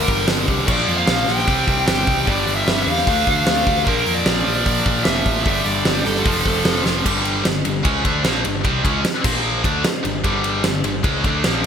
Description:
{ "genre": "hard rock", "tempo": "151 BPM", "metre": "4/4", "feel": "straight", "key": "G dorian", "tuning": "A4 = 440 Hz", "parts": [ { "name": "biting lead guitar", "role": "melody", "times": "0.0-6.8 s", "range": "A4 to G5", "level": "-22 LUFS", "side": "left 1 dB", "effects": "overdrive, ping-pong delay" }, { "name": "heavy high-gain guitar", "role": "riff", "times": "0.0-11.6 s", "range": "F2 to D4", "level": "-20 LUFS", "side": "equal", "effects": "distortion" }, { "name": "fuzz picked electric bass", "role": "bass", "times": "0.0-11.6 s", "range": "F1 to F2", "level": "-24 LUFS", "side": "equal", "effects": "overdrive" }, { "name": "huge arena drum kit", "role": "drums", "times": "0.1-11.7 s", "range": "crash cymbal, hi-hat, kick drum, ride cymbal, snare drum", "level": "-20 LUFS", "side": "equal", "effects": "gated reverb" } ], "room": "moderate plate reverb, RT60 1.1 s, small room ambience", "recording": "bright 1980s-style digital production", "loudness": "-16 LUFS", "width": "side -8 dB against mid", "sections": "0.0-7.1 A section; 7.1-11.7 B section", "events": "drum fill 6.9", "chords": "0.0 Gm; 0.7 Bb5; 1.5 C5; 2.3 G5; 3.1 Dm; 3.9 Bb; 5.5 G5; 6.3 F; 7.1 Gm; 9.2 Bb5; 9.6 Gm", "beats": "0.28 | 0.68 1.08 1.48 1.88 | 2.27 2.67 3.07 3.47 | 3.87 4.26 4.66 5.06 | 5.46 5.86 6.25 6.65 | 7.05 7.45 7.85 8.25 | 8.64 9.04 9.44 9.84 | 10.24 10.64 11.04 11.44" }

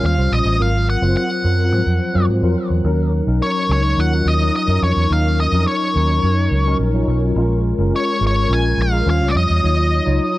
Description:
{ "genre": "polished 1980s jazz-funk pop", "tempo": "106 BPM", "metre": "4/4", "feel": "straight", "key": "Eb minor", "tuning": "A4 = 440 Hz", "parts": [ { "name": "octave-fuzz lead guitar", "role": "melody", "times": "0.0-10.4 s", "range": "Db5 to Ab5", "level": "-21 LUFS", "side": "left 1 dB", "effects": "distortion" }, { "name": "mellow tine electric piano", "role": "accompaniment", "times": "0.0-10.4 s", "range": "F3 to Db5", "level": "-20 LUFS", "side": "left 1 dB", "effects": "medium stereo tremolo, ensemble chorus" }, { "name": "vintage muted fingered electric bass", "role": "bass", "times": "0.0-10.2 s", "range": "Gb1 to Ab2", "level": "-17 LUFS", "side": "equal", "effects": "none" } ], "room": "little or no reverb", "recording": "dry, close 1970s-style studio recording", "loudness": "-15 LUFS", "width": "side -17 dB against mid", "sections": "0.0-10.4 A section", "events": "none", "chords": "0.0 Eb13; 0.6 Ab13; 2.8 Ebm7; 7.4 Bbm7; 9.1 Eb13; 9.6 Ebm9", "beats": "0.03 | 0.59 1.16 1.72 2.29 | 2.85 3.41 3.98 4.54 | 5.11 5.67 6.24 6.80 | 7.37 7.93 8.50 9.06 | 9.63 10.20" }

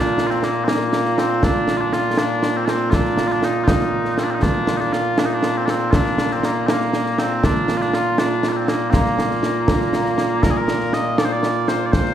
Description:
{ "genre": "scottish traditional, Scottish pipe music", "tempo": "80 BPM (dotted quarters)", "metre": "6/8", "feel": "straight", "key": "Bb major", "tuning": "A4 = 440 Hz", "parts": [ { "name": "mellow small bagpipes", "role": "melody", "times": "0.0-12.1 s", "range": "Bb2 to Eb5", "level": "-19 LUFS", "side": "equal", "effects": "none" }, { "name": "concert snare drum and concert bass drum", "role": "drums", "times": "0.1-12.1 s", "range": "none", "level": "-21 LUFS", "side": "equal", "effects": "none" } ], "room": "wet recital hall reverb, RT60 1.4 s", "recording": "heard from further back in the room", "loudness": "-17 LUFS", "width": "side -10 dB against mid", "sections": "0.0-10.4 A section; 10.4-12.1 B section", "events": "none", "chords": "none", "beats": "0.68 | 1.43 2.18 | 2.93 3.68 | 4.43 5.18 | 5.93 6.68 | 7.43 8.18 | 8.93 9.68 | 10.43 11.18 | 11.93" }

